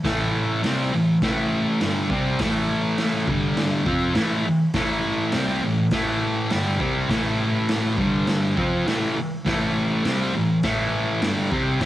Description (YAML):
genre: garage rock duo or trio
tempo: 102 BPM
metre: 4/4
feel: straight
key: A minor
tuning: A4 = 440 Hz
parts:
  - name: thick fuzz guitar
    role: riff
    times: 0.0-11.9 s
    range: G2 to F4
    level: -21 LUFS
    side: equal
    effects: distortion, cassette tape
  - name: raw garage drum kit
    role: drums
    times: 0.0-11.9 s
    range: hi-hat, kick drum, snare drum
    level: -27 LUFS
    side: equal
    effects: none
room: moderate spring reverb, RT60 2.0 s, small room ambience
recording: home recording on cassette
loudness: -20 LUFS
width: side -14 dB against mid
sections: 0.0-11.9 A section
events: none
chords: 0.0 Am; 3.3 G5; 3.9 Am; 8.0 G5; 8.6 Am